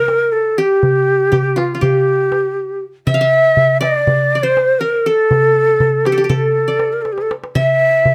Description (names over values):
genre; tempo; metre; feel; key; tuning
Turkish makam ensemble; 241 BPM (eighths); 9/8; straight; D makam ussak; A4 = 440 Hz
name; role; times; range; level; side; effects
breathy ney; melody; 0.0-8.1 s; F4 to E5-23c; -16 LUFS; equal; none
qanun; second line; 0.0-8.1 s; F4 to F5; -25 LUFS; equal; none
darbuka; percussion; 0.1-8.1 s; none; -21 LUFS; equal; none
room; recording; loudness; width
light reverb; close, detailed microphones; -15 LUFS; mono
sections
0.0-8.1 A section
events
drum fill 7.0-7.5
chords
none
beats
0.07 0.32 0.57 | 0.82 1.06 1.31 1.56 1.81 2.06 2.31 2.56 2.81 | 3.06 3.31 3.56 3.81 4.06 4.30 4.55 4.80 5.05 | 5.30 5.55 5.80 6.05 6.30 6.55 6.80 7.05 7.30 | 7.55 7.80 8.04